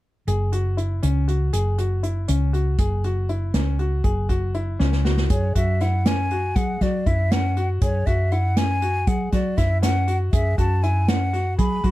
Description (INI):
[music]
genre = progressive instrumental, band music in an uneven meter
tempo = 239 BPM (eighths)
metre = 5/8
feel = straight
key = unclear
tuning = A4 = 442 Hz
[part]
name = clear grand piano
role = arpeggios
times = 0.3-11.9 s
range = C#4 to G#4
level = -28 LUFS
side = left 3 dB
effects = none
[part]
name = woody fretless electric bass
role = bass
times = 0.3-11.9 s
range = F#1 to F#3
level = -21 LUFS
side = equal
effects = lush chorus
[part]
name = unplugged drum kit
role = drums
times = 0.3-11.9 s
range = hi-hat, kick drum, snare drum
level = -24 LUFS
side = equal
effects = none
[part]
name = breathy mellow silver concert flute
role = melody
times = 5.3-11.9 s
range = C#5 to B5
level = -26 LUFS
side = left 1 dB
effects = none
[sound]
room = little or no reverb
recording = none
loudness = -19 LUFS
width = side -16 dB against mid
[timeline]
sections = 0.3-5.3 A section; 5.3-11.9 B section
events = drum fill 4.8-5.3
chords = 0.3 F#5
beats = | 0.27 0.53 0.78 1.03 1.28 | 1.53 1.78 2.03 2.28 2.54 | 2.79 3.04 3.29 3.54 3.79 | 4.04 4.29 4.55 4.80 5.05 | 5.30 5.55 5.80 6.05 6.31 | 6.56 6.81 7.06 7.31 7.56 | 7.81 8.06 8.32 8.57 8.82 | 9.07 9.32 9.57 9.82 10.08 | 10.33 10.58 10.83 11.08 11.33 | 11.59 11.84